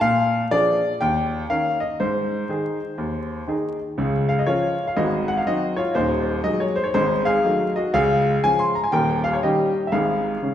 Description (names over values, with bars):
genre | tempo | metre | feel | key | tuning
jazz, stride piano | 121 BPM | 4/4 | swing 63% on 8ths | Db major | A4 = 438 Hz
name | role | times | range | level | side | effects
clear grand piano | solo | 0.0-10.5 s | Eb1 to C6 | -19 LUFS | left 1 dB | none
room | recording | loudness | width
wet recital hall reverb, RT60 1.8 s | recorded in a church or concert hall, vinyl crackle, nothing above 10.7 kHz | -19 LUFS | side -10 dB against mid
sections
0.0-4.0 A section; 4.0-10.5 B section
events
none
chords
0.0 Bb7; 1.0 Eb7; 2.0 Ab; 4.0 Db; 5.0 Ab7; 6.0 Ab7/Eb; 6.9 Ab5; 7.9 Db; 8.9 Eb7; 9.9 Db/Ab